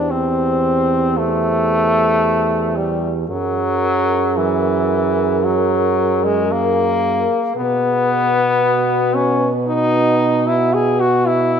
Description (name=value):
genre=classical, lyrical piece for horn quartet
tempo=56 BPM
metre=4/4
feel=rubato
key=unclear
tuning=A4 = 440 Hz
part: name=mellow French horn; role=melody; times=0.0-11.5 s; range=A#4 to C5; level=-24 LUFS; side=left 6 dB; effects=none
part: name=mellow French horn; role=second line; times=0.0-11.6 s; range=F#4 to G#4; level=-23 LUFS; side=right 9 dB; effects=none
part: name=clear French horn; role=accompaniment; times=0.0-11.6 s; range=E3 to G#4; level=-17 LUFS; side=left 2 dB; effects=none
part: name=mellow French horn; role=bass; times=0.0-11.6 s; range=E2 to B2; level=-21 LUFS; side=right 3 dB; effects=none
room=moderate scoring stage reverb, RT60 1.9 s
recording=none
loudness=-14 LUFS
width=side -7 dB against mid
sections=0.0-11.6 A section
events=none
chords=0.0 C/E; 3.3 F#9; 7.6 B5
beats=0.10 1.17 2.23 | 3.29 4.36 5.44 6.51 | 7.56 8.61 9.68 10.74